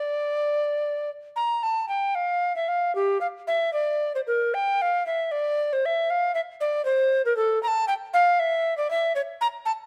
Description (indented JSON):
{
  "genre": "classical, baroque-style fantasia for unaccompanied recorder",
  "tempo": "77 BPM (dotted quarters)",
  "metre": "6/8",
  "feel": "rubato",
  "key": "F major",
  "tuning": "A4 = 442 Hz",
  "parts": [
    { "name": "mellow tenor recorder", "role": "solo", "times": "0.0-9.7 s", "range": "G4 to Bb5", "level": "-25 LUFS", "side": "equal", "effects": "none" }
  ],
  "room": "light reverb",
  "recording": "close, detailed microphones",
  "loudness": "-25 LUFS",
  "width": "mono",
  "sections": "0.0-1.4 A section; 1.4-9.9 A section",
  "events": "none",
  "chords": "none"
}